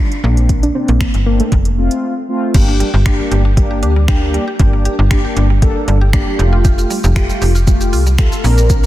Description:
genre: dance-pop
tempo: 117 BPM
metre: 4/4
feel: straight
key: G minor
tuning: A4 = 438 Hz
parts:
  - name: soft round pluck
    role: melody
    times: 0.0-2.0 s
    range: A3 to D4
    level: -20 LUFS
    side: right 1 dB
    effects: chorus, ping-pong delay
  - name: mellow synth brass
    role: accompaniment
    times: 0.0-8.9 s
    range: A3 to Bb4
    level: -19 LUFS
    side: left 1 dB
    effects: chorus, sidechain pumping
  - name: smooth R&B drum kit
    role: drums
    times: 0.1-8.9 s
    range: crash cymbal, finger snaps, hi-hat, kick drum, shaker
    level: -15 LUFS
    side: equal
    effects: soft clipping on snare
  - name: slap-like FM bass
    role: bass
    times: 0.2-8.9 s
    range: F1 to D2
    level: -13 LUFS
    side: equal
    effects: sidechain pumping
  - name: mallet-like synth pluck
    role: arpeggios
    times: 2.5-8.9 s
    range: G3 to Bb4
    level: -24 LUFS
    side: right 2 dB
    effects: chorus, sidechain pumping, ping-pong delay
  - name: riser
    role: sound effects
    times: 8.7-8.9 s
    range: none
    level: barely audible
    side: none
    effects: none
room: light reverb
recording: dense, heavily limited modern master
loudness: -11 LUFS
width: side -15 dB against mid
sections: 0.0-2.5 A section; 2.5-8.9 B section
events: break 2.0-2.5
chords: 0.2 Bbadd9; 1.5 F; 2.5 Gm; 6.4 Fadd9

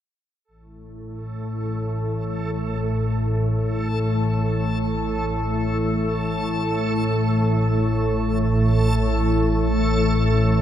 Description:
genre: dark ambient drone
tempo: free time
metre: none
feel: none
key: unclear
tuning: A4 = 441 Hz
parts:
  - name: backwards swelling texture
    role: texture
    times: 1.3-10.6 s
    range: A4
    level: -29 LUFS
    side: left 1 dB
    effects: built-in reverb
  - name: organ-like drone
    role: drone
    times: 0.9-10.6 s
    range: A1 to A2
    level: -20 LUFS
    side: equal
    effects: ensemble chorus, built-in reverb
  - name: sweeping resonant pad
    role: sustained chords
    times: 8.1-10.6 s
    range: A2 to E3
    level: -24 LUFS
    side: right 1 dB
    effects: lush chorus
room: moderate plate reverb, RT60 3.0 s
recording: none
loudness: -20 LUFS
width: side -10 dB against mid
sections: 0.5-10.6 A section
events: fade-out on synth texture 0.5-10.6; filter sweep on synth drone 0.5-10.6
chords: none

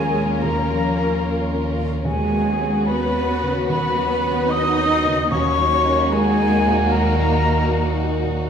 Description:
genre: cinematic, emotional film score for orchestra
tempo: 74 BPM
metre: 4/4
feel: rubato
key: Eb minor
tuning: A4 = 440 Hz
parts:
  - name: dark studio violin section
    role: melody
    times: 0.0-8.5 s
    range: Gb4 to Bb4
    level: -30 LUFS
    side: equal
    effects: none
  - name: bright concert flute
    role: second line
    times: 0.0-8.1 s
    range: Ab5 to Eb6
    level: -22 LUFS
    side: left 2 dB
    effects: none
  - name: warm studio violin section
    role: second line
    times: 0.0-8.5 s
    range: Bb3 to F4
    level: -29 LUFS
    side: left 3 dB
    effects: none
  - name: dark baby grand piano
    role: accompaniment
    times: 0.0-8.5 s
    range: Eb2 to Cb5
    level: -26 LUFS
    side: right 1 dB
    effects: none
  - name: warm studio viola section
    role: accompaniment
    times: 0.0-8.1 s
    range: Ab4 to Eb5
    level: -27 LUFS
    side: equal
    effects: none
  - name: mellow French horn section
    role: sustained chords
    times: 0.0-8.5 s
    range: Bb3 to Gb4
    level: -29 LUFS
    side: left 5 dB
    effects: none
  - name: warm studio cello section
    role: bass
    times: 0.0-8.1 s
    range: Ab3 to Eb4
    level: -25 LUFS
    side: right 1 dB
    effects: none
  - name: warm symphonic double bass section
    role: bass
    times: 0.0-8.5 s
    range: Eb2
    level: -24 LUFS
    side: right 1 dB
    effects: none
room: wet recital hall reverb, RT60 1.4 s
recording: recorded in a church or concert hall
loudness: -17 LUFS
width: side -7 dB against mid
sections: 0.0-8.5 A section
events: none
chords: 0.0 Bbm/Eb; 2.1 Db7sus4/Eb; 5.3 Ebm7

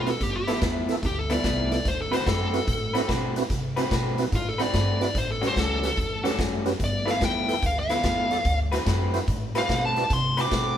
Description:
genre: electric blues shuffle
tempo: 145 BPM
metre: 4/4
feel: swing 65% on 8ths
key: D mixolydian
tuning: A4 = 440 Hz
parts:
  - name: smooth overdriven lead guitar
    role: melody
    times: 0.0-10.8 s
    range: F4 to D6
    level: -27 LUFS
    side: left 1 dB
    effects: none
  - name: electric guitar through a small old amp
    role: riff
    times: 0.0-10.8 s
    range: G2 to B4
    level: -30 LUFS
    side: left 2 dB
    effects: none
  - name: upright bass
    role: bass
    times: 0.0-10.8 s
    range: G1 to C3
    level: -29 LUFS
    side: equal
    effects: none
  - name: mellow tonewheel organ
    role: accompaniment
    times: 0.1-10.5 s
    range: B3 to D5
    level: -31 LUFS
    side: right 4 dB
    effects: slow rotary speaker, chorus vibrato
  - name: raw garage drum kit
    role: drums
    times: 0.1-10.6 s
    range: hi-hat, kick drum, snare drum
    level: -29 LUFS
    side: equal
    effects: none
room: moderate stone room reverb, RT60 1.4 s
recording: band playing live in one room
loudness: -22 LUFS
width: side -10 dB against mid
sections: 0.0-10.8 A section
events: none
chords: 0.2 G13; 1.9 D13; 5.1 A13; 6.8 G13; 8.5 D13

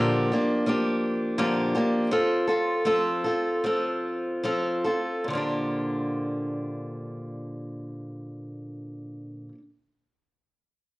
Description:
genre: folk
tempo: 70-86 BPM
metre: 4/4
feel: straight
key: Bb major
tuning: A4 = 440 Hz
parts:
  - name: picked steel-string acoustic guitar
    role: accompaniment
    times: 0.0-9.6 s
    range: Bb2 to A4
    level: -25 LUFS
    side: equal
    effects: none
room: wet large studio reverb, RT60 0.8 s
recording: worn, warbling old tape, cassette tape, warbly pitch drift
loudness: -24 LUFS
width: side -20 dB against mid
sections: 0.0-5.3 A section; 5.3-8.7 B section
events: slowing down 0.0-5.3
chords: 0.0 Bb6; 2.1 F; 5.3 Bb6

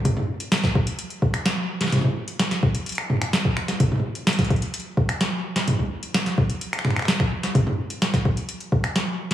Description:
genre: IDM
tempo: 128 BPM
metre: 4/4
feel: straight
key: none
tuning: none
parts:
  - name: electro analog drum machine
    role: drums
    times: 0.1-9.3 s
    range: finger snaps, hi-hat, snare drum, toms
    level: -22 LUFS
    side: equal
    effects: tape echo
  - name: electronic kick drum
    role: drums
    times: 0.1-8.8 s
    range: none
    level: -21 LUFS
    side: equal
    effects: overdrive
room: moderate plate reverb, RT60 2.0 s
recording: heavily compressed radio sound, studio reverb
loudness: -21 LUFS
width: side -12 dB against mid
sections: 0.1-9.3 A section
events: none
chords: none

